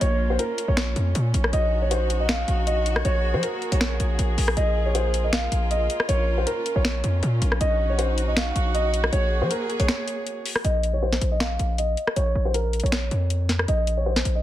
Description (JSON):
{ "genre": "hip hop, trap", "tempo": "158 BPM", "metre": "4/4", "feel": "half-time", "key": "Bb minor", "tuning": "A4 = 439 Hz", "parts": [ { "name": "dark concert grand piano", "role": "melody", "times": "0.0-14.4 s", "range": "Bb4 to F5", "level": "-26 LUFS", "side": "equal", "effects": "low-pass filter, ping-pong delay" }, { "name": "dark studio string section", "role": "sustained chords", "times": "0.0-10.6 s", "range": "Bb3 to Ab4", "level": "-31 LUFS", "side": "right 2 dB", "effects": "none" }, { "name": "hard-hitting 808-style bass", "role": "bass", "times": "0.0-14.4 s", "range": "Bb1 to F3", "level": "-23 LUFS", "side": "equal", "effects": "none" }, { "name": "trap drum kit", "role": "drums", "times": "0.0-14.3 s", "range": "finger snaps, hi-hat, rim click, snare drum", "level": "-27 LUFS", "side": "left 1 dB", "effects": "soft clipping on snare" } ], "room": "little or no reverb", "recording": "dense, heavily limited modern master", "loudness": "-21 LUFS", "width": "side -13 dB against mid", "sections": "0.0-10.6 A section; 10.6-14.4 B section", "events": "break 9.9-10.6", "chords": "0.0 Bbm; 1.5 Ebm7/Bb; 3.0 Gbsus2/Bb; 4.6 Fm/Bb; 6.1 Bbm; 7.6 Ebm7/Bb; 9.1 Gbsus2/Bb; 10.6 Bbsus4; 12.2 Bbm; 13.7 Eb5/Bb", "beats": "| 0.01 0.39 0.77 1.15 | 1.53 1.91 2.29 2.67 | 3.05 3.43 3.81 4.19 | 4.57 4.95 5.33 5.71 | 6.09 6.47 6.85 7.23 | 7.61 7.99 8.37 8.75 | 9.13 9.51 9.88 10.27 | 10.64 11.03 11.40 11.78 | 12.16 12.54 12.92 13.30 | 13.68 14.06" }